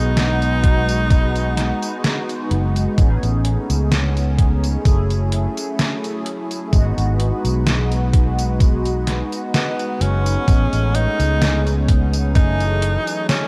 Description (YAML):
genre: vaporwave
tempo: 64 BPM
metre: 4/4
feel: swing 54% on 16ths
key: unclear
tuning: A4 = 440 Hz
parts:
  - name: breathy tenor saxophone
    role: melody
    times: 0.0-2.5, 9.5-13.5 s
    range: B3 to D#4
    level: -26 LUFS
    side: equal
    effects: tape echo
  - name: mellow synth brass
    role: accompaniment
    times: 0.0-13.5 s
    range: E3 to G#4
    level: -27 LUFS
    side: equal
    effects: phaser, analog chorus, cassette tape, analog delay
  - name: lush unison pad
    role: sustained chords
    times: 0.0-13.5 s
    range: E3 to B4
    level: -33 LUFS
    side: equal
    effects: chorus
  - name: fretless electric bass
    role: bass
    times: 0.0-13.0 s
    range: F#1 to C#2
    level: -21 LUFS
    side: equal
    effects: none
  - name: detuned 8-bit digital drum machine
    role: drums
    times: 0.2-13.5 s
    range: hi-hat, snare drum, tambourine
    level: -26 LUFS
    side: equal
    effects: small room reverb, gated reverb
  - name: electronic kick drum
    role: drums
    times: 0.6-12.6 s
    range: none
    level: -17 LUFS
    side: equal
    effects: small room reverb
room: little or no reverb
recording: none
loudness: -18 LUFS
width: mono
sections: 0.0-13.5 A section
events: none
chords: 0.0 B6; 3.0 Amaj9#11; 4.9 F#m7; 6.7 B6; 10.5 Amaj9#11; 12.4 F#m7